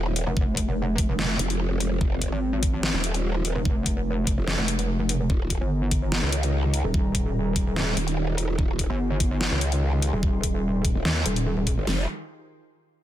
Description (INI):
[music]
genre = heavy wobble dubstep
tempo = 146 BPM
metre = 4/4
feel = half-time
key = F minor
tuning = A4 = 441 Hz
[part]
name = lush unison pad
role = sustained chords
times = 0.0-12.1 s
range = Eb3 to C6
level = -33 LUFS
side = right 1 dB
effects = chorus, phaser, sidechain pumping
[part]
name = growl bass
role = bass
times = 0.0-12.1 s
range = Eb1 to Eb2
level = -25 LUFS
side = equal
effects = chorus, overdrive
[part]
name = dubstep drum kit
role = drums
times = 0.2-11.8 s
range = hi-hat, snare drum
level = -28 LUFS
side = left 1 dB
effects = none
[part]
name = pulsing pluck wobble bass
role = bass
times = 0.3-11.8 s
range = Eb1 to Ab1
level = -25 LUFS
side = equal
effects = chorus, overdrive
[part]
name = dubstep drum kit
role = drums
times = 0.4-12.0 s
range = kick drum, snare drum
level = -25 LUFS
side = equal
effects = overdrive
[sound]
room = little or no reverb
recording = dense, heavily limited modern master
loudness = -22 LUFS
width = side -12 dB against mid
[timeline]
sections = 0.0-11.9 A section; 11.9-13.0 B section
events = drop 0.0-11.9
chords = 0.0 Fm; 5.3 Eb; 11.9 Fm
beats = | 0.37 0.78 1.19 1.60 | 2.01 2.42 2.83 3.24 | 3.65 4.07 4.48 4.89 | 5.30 5.71 6.12 6.53 | 6.94 7.35 7.76 8.18 | 8.59 9.00 9.41 9.82 | 10.23 10.64 11.05 11.46 | 11.87